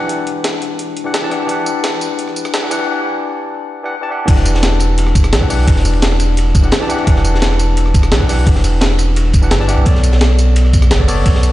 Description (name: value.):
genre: liquid drum and bass.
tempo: 172 BPM.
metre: 4/4.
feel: straight.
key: E dorian.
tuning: A4 = 440 Hz.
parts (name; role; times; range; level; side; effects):
barky tine electric piano; accompaniment; 0.0-11.5 s; E3 to A5; -18 LUFS; left 1 dB; medium stereo tremolo, ping-pong delay.
warm sub bass; bass; 0.0-11.5 s; E1 to B1; -13 LUFS; equal; high-pass filter.
breakbeat sampler-style drum kit; drums; 0.1-11.5 s; crash cymbal, hi-hat, rim click, snare drum, tambourine; -20 LUFS; equal; high-pass filter on hats, high-pass filter on snare, high-pass filter on perc, high-pass filter on cymbals.
crunchy breakbeat drum kit; drums; 4.3-11.5 s; hi-hat, ride cymbal, snare drum; -25 LUFS; equal; high-pass filter on cymbals, high-pass filter on hats, high-pass filter on snare, high-pass filter on room.
electronic kick drum; drums; 4.3-11.3 s; none; -13 LUFS; equal; none.
room: light reverb, small room ambience.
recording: played on a big sound system in a bare room, large studio reverb, high-pass filter, nothing above 10.5 kHz.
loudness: -11 LUFS.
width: side -15 dB against mid.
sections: 0.0-4.3 A section; 4.3-11.5 B section.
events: build-up 0.0-4.3; break 2.9-4.3; drop 4.3-11.5.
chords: 0.0 Em9; 9.9 Bm9.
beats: | 0.10 0.44 0.79 1.14 | 1.49 1.84 2.19 2.54 | 2.88 3.23 3.58 3.93 | 4.28 4.63 4.98 5.33 | 5.68 6.03 6.37 6.72 | 7.07 7.42 7.77 8.12 | 8.47 8.82 9.16 9.51 | 9.86 10.21 10.56 10.91 | 11.26.